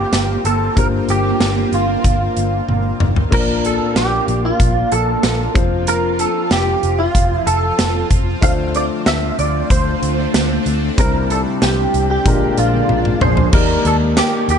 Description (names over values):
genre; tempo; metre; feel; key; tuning
1980s-style pop; 94 BPM; 4/4; straight; unclear; A4 = 440 Hz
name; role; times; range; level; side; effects
direct-recorded clean electric guitar; melody; 0.0-14.6 s; F4 to F5; -19 LUFS; right 2 dB; ensemble chorus, digital delay
warm concert grand piano; accompaniment; 0.0-14.6 s; G2 to D5; -22 LUFS; left 5 dB; none
shimmering ambient pad; sustained chords; 0.0-14.6 s; D3 to D5; -24 LUFS; right 1 dB; chorus, built-in reverb, phaser
vintage muted picked electric bass; bass; 0.0-14.6 s; F1 to Eb2; -20 LUFS; equal; none
big rock drum kit; drums; 0.1-14.6 s; crash cymbal, hi-hat, kick drum, snare drum, tambourine, toms; -18 LUFS; equal; none
mellow synth brass; stabs; 12.3-13.5 s; D3 to Ab4; -24 LUFS; right 6 dB; chorus, phaser
overdriven semi-hollow guitar; accompaniment; 13.5-14.6 s; Eb3 to Eb4; -27 LUFS; right 5 dB; none
room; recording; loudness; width
light reverb, small room ambience; nothing above 10.8 kHz; -14 LUFS; side -7 dB against mid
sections
0.0-3.3 A section; 3.3-13.5 B section; 13.5-14.6 C section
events
drum fill 2.7-3.3, 12.9-13.5; band accent 11.0-13.5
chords
0.0 C7sus4/G; 3.3 Bb; 5.6 F; 8.4 Dm7; 11.0 C; 12.3 Bb7; 13.5 Ebmaj7